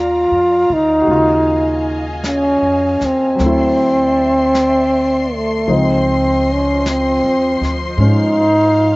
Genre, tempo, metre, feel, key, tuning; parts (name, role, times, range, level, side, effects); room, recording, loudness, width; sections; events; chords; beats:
jazz ballad; 52 BPM; 4/4; swing 68% on 8ths; A4 = 444 Hz
breathy trombone; melody; 0.0-9.0 s; A3 to F4; -13 LUFS; equal
clear concert grand piano; accompaniment; 0.0-9.0 s; Db3 to D5; -22 LUFS; left 2 dB; slapback echo
dark studio string section; sustained chords; 0.0-9.0 s; F3 to C6; -25 LUFS; left 2 dB
upright bass; bass; 0.0-9.0 s; Db2 to Ab2; -21 LUFS; equal
jazz brush drum kit; drums; 1.1-9.0 s; brushed snare drum, hi-hat, snare drum; -30 LUFS; equal
little or no reverb; recorded outdoors, with no room sound, nothing above 7.7 kHz; -12 LUFS; side -23 dB against mid
0.0-9.0 A section
0.0 Cm11; 1.1 Ebm11; 3.4 D9; 5.7 Dbmaj9
| 1.08 2.23 3.39 4.54 | 5.69 6.85 8.00